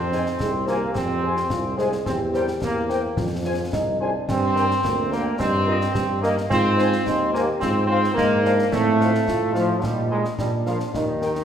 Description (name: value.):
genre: military-style march for wind band.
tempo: 108 BPM.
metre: 2/4.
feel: straight.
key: unclear.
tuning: A4 = 439 Hz.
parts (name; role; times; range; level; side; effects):
bright trombone section; sustained chords; 0.0-11.4 s; Eb3 to C4; -23 LUFS; equal; none.
mellow tuba; bass; 0.0-11.4 s; C2 to Bb2; -25 LUFS; right 1 dB; none.
mellow trumpet section; melody; 0.1-11.3 s; Eb5 to Ab5; -35 LUFS; left 1 dB; none.
clear euphonium; second line; 0.1-11.4 s; Bb3 to Ab4; -28 LUFS; right 2 dB; none.
clear French horn section; accompaniment; 0.1-11.3 s; D4 to C5; -30 LUFS; left 4 dB; none.
concert snare drum, concert bass drum and clash cymbals; drums; 0.1-11.4 s; none; -32 LUFS; left 2 dB; none.
room: wet recital hall reverb, RT60 1.7 s.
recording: recorded in a church or concert hall.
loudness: -19 LUFS.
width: side -8 dB against mid.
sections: 0.0-11.4 A section.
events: none.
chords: 0.0 Fm; 2.1 C7/E; 3.2 Fm; 4.3 Gm; 5.4 Eb/G; 6.5 Ab; 7.6 Fm/Ab; 8.7 F7/A; 9.8 Eb/Bb; 10.4 Bb7.